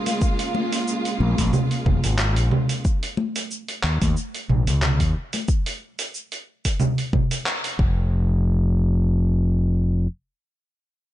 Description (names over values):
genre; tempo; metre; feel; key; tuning
sunset chillout; 91 BPM; 4/4; swing 55% on 16ths; unclear; A4 = 441 Hz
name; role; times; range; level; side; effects
clear symphonic string section; sustained chords; 0.0-2.8 s; Db3 to F4; -27 LUFS; right 2 dB; none
dusty soul sampler-style drum kit; drums; 0.1-7.8 s; congas, handclaps, hi-hat, shaker; -24 LUFS; right 2 dB; none
congas; percussion; 0.1-5.5 s; none; -29 LUFS; left 3 dB; none
electronic kick drum; drums; 0.2-7.9 s; none; -22 LUFS; equal; none
growling fingered electric bass; bass; 1.2-10.1 s; F1 to Eb2; -19 LUFS; equal; overdrive
room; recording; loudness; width
digital ambience; nothing above 10.7 kHz; -20 LUFS; side -14 dB against mid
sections
0.0-8.1 A section; 8.1-10.8 B section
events
band accent 7.5-7.8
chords
0.0 Bbm7; 2.8 Eb5; 7.8 N.C.